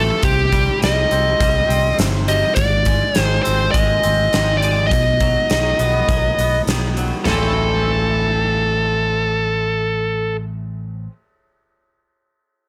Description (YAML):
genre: quiet-loud alternative rock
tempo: 102 BPM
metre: 4/4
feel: straight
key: A minor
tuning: A4 = 440 Hz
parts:
  - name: high-gain lead guitar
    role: melody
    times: 0.0-10.4 s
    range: G4 to Eb5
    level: -20 LUFS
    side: equal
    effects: distortion, slapback echo
  - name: twangy electric guitar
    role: arpeggios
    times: 0.0-11.1 s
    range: G#2 to E4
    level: -28 LUFS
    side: equal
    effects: subtle chorus
  - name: fingered electric bass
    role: bass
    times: 0.0-11.1 s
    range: G1 to C2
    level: -23 LUFS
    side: equal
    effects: none
  - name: huge arena drum kit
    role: drums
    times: 0.2-7.4 s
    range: crash cymbal, hi-hat, kick drum, snare drum, toms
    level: -24 LUFS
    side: equal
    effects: none
room: light reverb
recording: none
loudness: -17 LUFS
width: mono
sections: 0.0-7.3 A section; 7.3-9.6 B section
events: none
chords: 0.2 Cm; 2.6 G#; 4.9 B; 7.3 Am